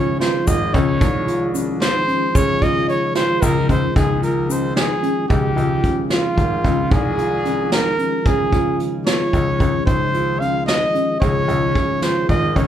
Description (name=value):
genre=progressive instrumental, band music in an uneven meter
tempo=223 BPM (eighths)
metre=11/8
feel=straight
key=Db major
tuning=A4 = 435 Hz
part: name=warm trumpet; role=melody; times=0.0-12.7 s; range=F4 to F5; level=-21 LUFS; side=equal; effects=none
part: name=mellow tonewheel organ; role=accompaniment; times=0.0-12.7 s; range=Eb3 to Ab3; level=-26 LUFS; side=equal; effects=overdrive, fast rotary speaker
part: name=mellow tine electric piano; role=arpeggios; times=0.0-12.7 s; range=Db4 to Ab4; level=-24 LUFS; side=right 2 dB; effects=medium stereo tremolo
part: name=clear grand piano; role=bass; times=0.0-12.7 s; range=Ab1 to Db3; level=-22 LUFS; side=left 2 dB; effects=none
part: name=vintage brush drum kit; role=drums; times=0.2-12.7 s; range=hi-hat, kick drum, snare drum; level=-20 LUFS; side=equal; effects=none
part: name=tube shaker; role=percussion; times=0.5-4.7 s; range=none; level=-33 LUFS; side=left 6 dB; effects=none
room=moderate large studio reverb, RT60 1.3 s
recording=band playing live in one room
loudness=-16 LUFS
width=side -10 dB against mid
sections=0.0-5.3 A section; 5.3-12.7 B section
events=none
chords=0.0 Dbmaj7